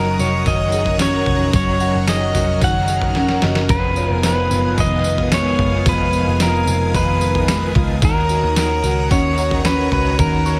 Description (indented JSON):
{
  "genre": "dream pop",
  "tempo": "111 BPM",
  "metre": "4/4",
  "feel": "straight",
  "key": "unclear",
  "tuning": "A4 = 442 Hz",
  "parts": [
    { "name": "pedal steel guitar", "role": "melody", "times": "0.0-10.6 s", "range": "Bb4 to Gb5", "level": "-23 LUFS", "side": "equal", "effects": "digital delay" },
    { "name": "crunchy overdriven guitar", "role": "accompaniment", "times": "0.0-10.6 s", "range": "F2 to Cb5", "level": "-30 LUFS", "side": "equal", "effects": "tremolo, analog chorus" },
    { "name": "string machine, full ensemble", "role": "sustained chords", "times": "0.0-10.6 s", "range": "Cb4 to F6", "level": "-28 LUFS", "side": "equal", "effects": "ensemble chorus" },
    { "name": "mellow electric guitar", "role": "arpeggios", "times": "0.0-10.6 s", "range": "F2 to Cb5", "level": "-25 LUFS", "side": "equal", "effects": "ensemble chorus, digital delay" },
    { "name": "vintage muted picked electric bass", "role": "bass", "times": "0.0-10.6 s", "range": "F1 to Eb2", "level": "-23 LUFS", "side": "equal", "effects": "none" },
    { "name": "synth chime", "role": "texture", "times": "0.0-10.6 s", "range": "Db5 to Db6", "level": "-37 LUFS", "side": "equal", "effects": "none" },
    { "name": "detuned 8-bit digital drum machine", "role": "drums", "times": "0.2-10.6 s", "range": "kick drum, snare drum, tambourine, toms", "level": "-23 LUFS", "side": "equal", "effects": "overdrive" }
  ],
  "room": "light reverb",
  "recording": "none",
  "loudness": "-17 LUFS",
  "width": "mono",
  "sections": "0.0-10.6 A section",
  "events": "drum fill 3.2-3.7",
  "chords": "0.0 Gb6; 3.7 Fm7b5; 8.0 Ebm7"
}